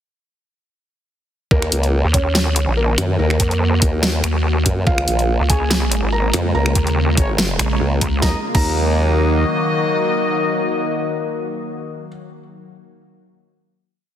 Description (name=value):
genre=heavy wobble dubstep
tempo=143 BPM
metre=4/4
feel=swing 54% on 16ths, half-time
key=Eb minor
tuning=A4 = 440 Hz
part: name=felt-muted upright piano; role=melody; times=1.5-12.1 s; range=Bb3 to Bb5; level=-25 LUFS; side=right 1 dB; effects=tape echo
part: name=evolving wavetable pad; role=sustained chords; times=2.6-11.8 s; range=Db3 to Gb4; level=-24 LUFS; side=equal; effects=phaser, built-in reverb, sidechain pumping
part: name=formant-sweep wobble bass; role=bass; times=1.5-9.4 s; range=Ab1 to Gb2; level=-18 LUFS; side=equal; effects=chorus, overdrive
part: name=electronic kick drum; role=drums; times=1.5-8.7 s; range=none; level=-18 LUFS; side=equal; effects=none
part: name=dubstep drum kit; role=drums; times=1.6-8.7 s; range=crash cymbal, finger snaps, hi-hat, snare drum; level=-22 LUFS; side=equal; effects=none
part: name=vowel-sweep wobble bass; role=bass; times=2.0-8.2 s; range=Ab1 to F2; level=-18 LUFS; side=equal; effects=chorus, overdrive
part: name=dark brass ensemble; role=stabs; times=5.5-12.1 s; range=Db4 to Eb5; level=-23 LUFS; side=left 4 dB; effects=tape echo
room=light reverb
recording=heavily compressed radio sound, multiband compression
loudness=-15 LUFS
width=side -10 dB against mid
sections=1.5-8.2 drop; 8.2-11.6 final chord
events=drop 1.5-8.2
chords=1.5 Ebm; 4.9 Db6; 8.2 Ebm